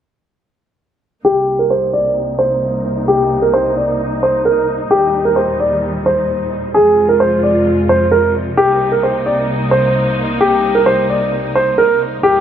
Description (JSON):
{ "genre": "hip hop", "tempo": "131 BPM", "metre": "4/4", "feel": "half-time", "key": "C minor", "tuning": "A4 = 441 Hz", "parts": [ { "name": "dark concert grand piano", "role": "melody", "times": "1.2-12.4 s", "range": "G4 to D5", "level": "-13 LUFS", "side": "right 1 dB", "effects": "low-pass filter, digital delay" }, { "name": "warm symphonic string section", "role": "sustained chords", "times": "1.2-12.4 s", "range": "C2 to F4", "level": "-19 LUFS", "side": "equal", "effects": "low-pass filter" } ], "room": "moderate lush hall reverb, RT60 2.3 s", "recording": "none", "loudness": "-12 LUFS", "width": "side -9 dB against mid", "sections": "1.2-12.4 A section", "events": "filter sweep 1.2-12.4", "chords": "1.2 Cm7; 4.9 Eb; 6.7 Fm; 8.6 Cm7" }